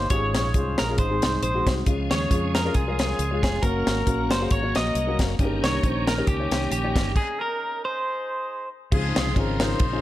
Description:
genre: uptempo gospel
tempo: 136 BPM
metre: 4/4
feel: swing 56% on 8ths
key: Db major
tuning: A4 = 440 Hz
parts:
  - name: clean electric guitar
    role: melody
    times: 0.0-8.7 s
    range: G4 to Eb5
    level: -30 LUFS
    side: right 2 dB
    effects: none
  - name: clear horn section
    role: melody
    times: 0.0-10.0 s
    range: Bb3 to Eb5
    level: -31 LUFS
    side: left 2 dB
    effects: none
  - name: dark upright piano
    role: accompaniment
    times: 0.0-10.0 s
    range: G2 to Db5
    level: -28 LUFS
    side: left 3 dB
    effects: none
  - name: fingered electric bass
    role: bass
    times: 0.0-10.0 s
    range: F1 to F2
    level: -28 LUFS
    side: equal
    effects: none
  - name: tight funk drum kit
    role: drums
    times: 0.1-9.9 s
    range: crash cymbal, hi-hat, kick drum, ride cymbal, snare drum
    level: -24 LUFS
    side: equal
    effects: none
  - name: tonewheel organ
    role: sustained chords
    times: 1.9-10.0 s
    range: Db3 to C5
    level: -32 LUFS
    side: right 3 dB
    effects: slow rotary speaker, chorus vibrato
room: light reverb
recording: none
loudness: -21 LUFS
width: side -14 dB against mid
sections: 0.0-8.9 A section; 8.9-10.0 B section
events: stop 7.2-8.9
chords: 0.1 Db/Ab; 1.0 Ab; 1.9 Db; 3.6 Gb; 5.4 Eb7/G; 7.2 Absus4; 8.0 Ab; 8.9 Dbmaj9

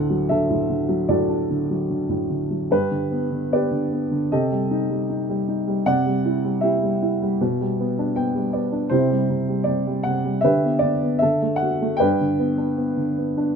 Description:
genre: classical, lyrical solo piano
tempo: 77 BPM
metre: 4/4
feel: rubato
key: G major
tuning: A4 = 441 Hz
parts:
  - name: dark upright piano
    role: solo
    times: 0.0-13.6 s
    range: D2 to G5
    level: -19 LUFS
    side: equal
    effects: none
room: light reverb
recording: minimal, uncompressed stereo recording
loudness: -19 LUFS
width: side -6 dB against mid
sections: 0.0-13.6 A section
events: upright piano fill 7.8-8.9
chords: 0.0 D; 2.7 G; 4.3 Cm6; 5.9 Cadd9; 7.4 G6/B; 8.9 C; 10.4 G/D; 11.2 Dadd9; 12.0 G

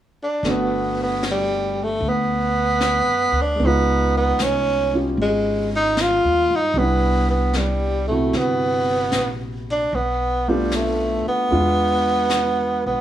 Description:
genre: jazz ballad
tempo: 76 BPM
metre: 4/4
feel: swing 69% on 8ths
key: G major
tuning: A4 = 440 Hz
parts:
  - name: breathy tenor saxophone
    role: melody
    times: 0.2-13.0 s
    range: G3 to E#4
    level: -20 LUFS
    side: right 1 dB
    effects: none
  - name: warm concert grand piano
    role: accompaniment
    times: 0.4-13.0 s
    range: C3 to G4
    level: -24 LUFS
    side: right 1 dB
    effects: none
  - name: upright bass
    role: bass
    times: 0.4-13.0 s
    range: G1 to G2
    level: -25 LUFS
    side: equal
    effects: none
  - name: jazz brush drum kit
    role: drums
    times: 0.4-13.0 s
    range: brushed snare drum, hi-hat, snare drum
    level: -30 LUFS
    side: left 2 dB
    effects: none
room: light reverb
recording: small room ambience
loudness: -18 LUFS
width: side -11 dB against mid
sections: 0.4-13.0 A section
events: none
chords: 0.4 Gmaj9; 3.6 C#9; 6.7 Cmaj9; 9.9 Bm7b5; 11.5 E7b9

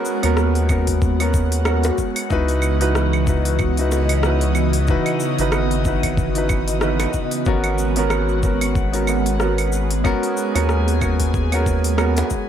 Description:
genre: sunset chillout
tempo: 93 BPM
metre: 4/4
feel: swing 57% on 16ths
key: G# minor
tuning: A4 = 440 Hz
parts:
  - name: warm grand piano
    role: accompaniment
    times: 0.0-12.5 s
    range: B3 to B4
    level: -23 LUFS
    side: moving between left 3 dB and right 7 dB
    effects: auto-pan, ping-pong delay
  - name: airy breathy pad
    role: sustained chords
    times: 0.0-12.5 s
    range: C#3 to D#5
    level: -24 LUFS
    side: right 1 dB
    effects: chorus, phaser
  - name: smooth R&B drum kit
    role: drums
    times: 0.1-12.5 s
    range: cabasa, claves, hi-hat, rim click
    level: -27 LUFS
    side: equal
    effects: overdrive, small room ambience
  - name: round analog bass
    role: bass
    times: 0.2-12.2 s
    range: G#1 to D#2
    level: -20 LUFS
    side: left 1 dB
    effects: none
  - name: electronic kick drum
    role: drums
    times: 0.7-12.5 s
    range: none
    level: -22 LUFS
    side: left 1 dB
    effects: overdrive, small room ambience
  - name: bongos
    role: percussion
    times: 1.8-12.3 s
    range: none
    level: -29 LUFS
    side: equal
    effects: none
room: light reverb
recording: none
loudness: -17 LUFS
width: side -9 dB against mid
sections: 0.0-12.5 A section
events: none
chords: 0.0 G#m11; 2.3 C#m11; 7.5 G#m11

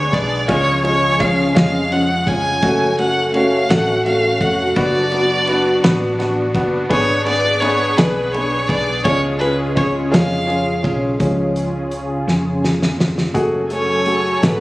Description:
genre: six-eight pop ballad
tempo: 56 BPM (dotted quarters)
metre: 6/8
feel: straight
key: unclear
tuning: A4 = 440 Hz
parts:
  - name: rich violin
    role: melody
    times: 0.0-14.6 s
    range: B4 to G#5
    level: -19 LUFS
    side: equal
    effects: none
  - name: warm baby grand piano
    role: accompaniment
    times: 0.0-14.6 s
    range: E#3 to G#4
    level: -19 LUFS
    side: left 1 dB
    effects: none
  - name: lush unison pad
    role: sustained chords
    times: 0.0-14.6 s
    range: C#3 to G#5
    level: -23 LUFS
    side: equal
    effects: chorus, phaser
  - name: direct-recorded clean electric guitar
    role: arpeggios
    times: 0.0-11.8 s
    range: F#3 to G#4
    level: -28 LUFS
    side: right 1 dB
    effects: none
  - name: hollow-body short-scale fingered electric bass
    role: bass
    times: 0.0-14.6 s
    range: E#1 to E#2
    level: -24 LUFS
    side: equal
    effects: none
  - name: loose indie drum kit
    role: drums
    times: 0.1-14.6 s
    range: hi-hat, kick drum, ride cymbal, snare drum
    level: -20 LUFS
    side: equal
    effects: none
room: light reverb, small room ambience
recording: recorded on a phone in the room, studio reverb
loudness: -14 LUFS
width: side -19 dB against mid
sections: 0.0-11.2 A section; 11.2-13.3 B section; 13.3-14.6 C section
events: grand piano solo 11.2-13.3; drum fill 12.3-13.3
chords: 0.5 C#; 2.6 F#m; 4.8 Bm/F#; 6.9 G#dim; 9.1 C#; 13.3 F#madd9

